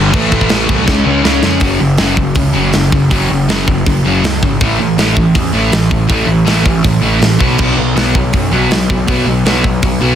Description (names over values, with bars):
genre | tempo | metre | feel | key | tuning
punk rock | 161 BPM | 4/4 | straight | unclear | A4 = 442 Hz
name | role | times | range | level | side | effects
sludgy distorted guitar | riff | 0.0-10.2 s | F#2 to C#4 | -12 LUFS | equal | overdrive
fuzz picked electric bass | bass | 0.0-10.2 s | F#1 to F#2 | -17 LUFS | equal | overdrive
tight metal drum kit | drums | 0.1-9.9 s | crash cymbal, hi-hat, kick drum, snare drum | -15 LUFS | equal | none
room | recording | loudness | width
little or no reverb | dense, heavily limited modern master | -10 LUFS | side -9 dB against mid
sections
0.0-1.6 A section; 1.6-10.2 B section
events
drum fill 0.9-1.6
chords
0.1 A5; 0.9 C#; 1.6 F#5; 4.6 A5; 7.4 B5